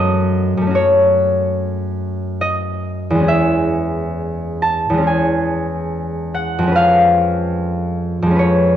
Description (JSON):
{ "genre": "classical, solo harp piece", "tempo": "72 BPM", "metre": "4/4", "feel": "rubato", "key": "C# minor", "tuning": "A4 = 440 Hz", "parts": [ { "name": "concert harp", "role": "solo", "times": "0.0-8.8 s", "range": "E2 to A5", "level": "-14 LUFS", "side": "equal", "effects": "none" } ], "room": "wet recital hall reverb, RT60 1.6 s", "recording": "worn, warbling old tape, cassette tape, warbly pitch drift", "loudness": "-15 LUFS", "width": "side -10 dB against mid", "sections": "0.0-8.8 A section", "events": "none", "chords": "0.0 F#m; 3.3 C#m/E; 6.8 C#7/E#", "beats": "0.75 1.59 2.42 | 3.29 4.17 5.07 5.93 | 6.76 7.59 8.40" }